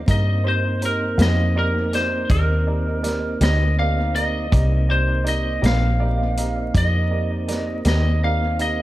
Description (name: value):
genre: slow blues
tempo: 54 BPM (dotted quarters)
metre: 12/8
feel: straight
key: C minor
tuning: A4 = 440 Hz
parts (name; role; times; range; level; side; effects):
- mellow tonewheel organ; sustained chords; 0.0-8.8 s; Bb3 to Eb4; -29 LUFS; right 1 dB; slow rotary speaker
- vintage muted fingered electric bass; bass; 0.0-8.8 s; Bb1 to G2; -20 LUFS; equal; none
- lightly driven lead guitar; melody; 0.1-8.8 s; Bb4 to F5; -24 LUFS; equal; none
- clear upright piano; accompaniment; 0.1-8.8 s; Eb4 to F5; -31 LUFS; right 6 dB; analog delay
- vintage drum kit; drums; 0.1-8.8 s; hi-hat, kick drum, snare drum; -24 LUFS; equal; analog delay
- electric guitar through a small old amp; accompaniment; 1.2-8.1 s; C3 to G4; -34 LUFS; left 2 dB; none
room: light reverb, studio reverb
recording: echo-heavy mix, vinyl crackle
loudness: -18 LUFS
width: side -16 dB against mid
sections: 0.0-8.8 A section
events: none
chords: 0.0 Cm7